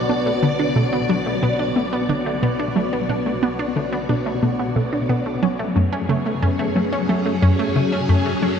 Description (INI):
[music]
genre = ambient, sequencer-driven space music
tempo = 90 BPM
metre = 4/4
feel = straight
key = B dorian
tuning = A4 = 441 Hz
[part]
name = phased string machine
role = sustained chords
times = 0.0-8.6 s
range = F#3 to D5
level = -23 LUFS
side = left 1 dB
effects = ensemble chorus, phaser, shimmer reverb
[part]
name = wide unison pluck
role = arpeggios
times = 0.0-8.5 s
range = A3 to D4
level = -24 LUFS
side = right 1 dB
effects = auto-pan, cassette tape, ping-pong delay, shimmer reverb
[part]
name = analog drone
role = bass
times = 0.0-8.6 s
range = B1 to F#2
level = -35 LUFS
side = equal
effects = chorus
[part]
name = hollow square pluck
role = riff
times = 0.1-8.6 s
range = F#2 to B3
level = -21 LUFS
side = left 1 dB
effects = chorus, phaser, ping-pong delay
[sound]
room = wet cathedral reverb, RT60 6.2 s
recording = in a vast, echoing space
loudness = -18 LUFS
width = side -7 dB against mid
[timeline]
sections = 0.0-8.6 A section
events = fade-in on synth drone 0.0-8.6; filter sweep on synth arpeggio sound 0.0-8.6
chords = 0.0 Bm7; 5.4 F#m